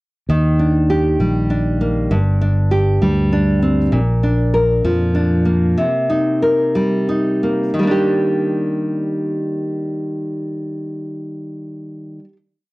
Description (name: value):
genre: six-eight pop ballad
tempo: 56-66 BPM (dotted quarters)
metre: 6/8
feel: straight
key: Eb major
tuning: A4 = 440 Hz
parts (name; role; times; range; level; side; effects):
- nylon-string guitar; accompaniment; 0.3-12.4 s; G2 to Bb4; -17 LUFS; equal; cassette tape
- fingered electric bass; bass; 0.3-5.7 s; G1 to F2; -17 LUFS; equal; none
room: wet studio reverb, RT60 0.6 s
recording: home recording on cassette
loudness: -15 LUFS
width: side -21 dB against mid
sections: 0.3-7.8 verse; 7.8-12.0 final chord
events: slowing down 3.9-7.8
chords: 0.3 Ebmaj7; 2.1 Gsus4; 3.9 Bb; 5.8 Cm7; 7.8 Ebmaj7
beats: | 0.30 1.21 | 2.11 3.02 | 3.93 4.84 | 5.78 6.75 | 7.79 8.85 | 9.91 10.97